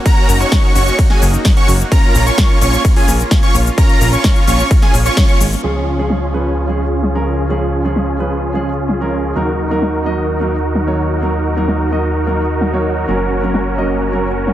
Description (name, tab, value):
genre	EDM, festival progressive house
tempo	129 BPM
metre	4/4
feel	straight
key	unclear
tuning	A4 = 440 Hz
part	lush unison pad	sustained chords	0.0-14.5 s	C#3 to A#4	-24 LUFS	equal	chorus, sidechain pumping
part	wide unison lead	arpeggios	0.1-5.4 s	G#5 to C#6	-20 LUFS	equal	ensemble chorus, sidechain pumping, dub echo
part	supersaw chords	riff	0.1-14.5 s	C#4 to C#5	-19 LUFS	right 1 dB	sidechain pumping, low-pass filter, dub echo
part	big-room dance drum kit	drums	0.1-14.5 s	crash cymbal, hi-hat, ride cymbal, shaker, snare drum	-21 LUFS	left 1 dB	overdrive, low-pass filter on hats, low-pass filter on cymbals, low-pass filter on perc, low-pass filter on snare
part	electronic kick drum	drums	0.1-5.3 s	none	-12 LUFS	equal	overdrive
part	fat analog bass	bass	0.3-14.5 s	F#1 to D#2	-18 LUFS	equal	sidechain pumping
part	dark baby grand piano	accompaniment	5.6-14.3 s	E#3 to D#5	-21 LUFS	right 2 dB	sidechain pumping, dub echo
room	light reverb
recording	none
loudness	-12 LUFS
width	side -13 dB against mid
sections	0.0-5.6 A section; 5.6-14.5 B section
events	drop 0.0-5.6; band accent 5.2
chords	0.0 F#; 1.9 A#m; 5.6 C#; 9.4 D#m; 13.1 F#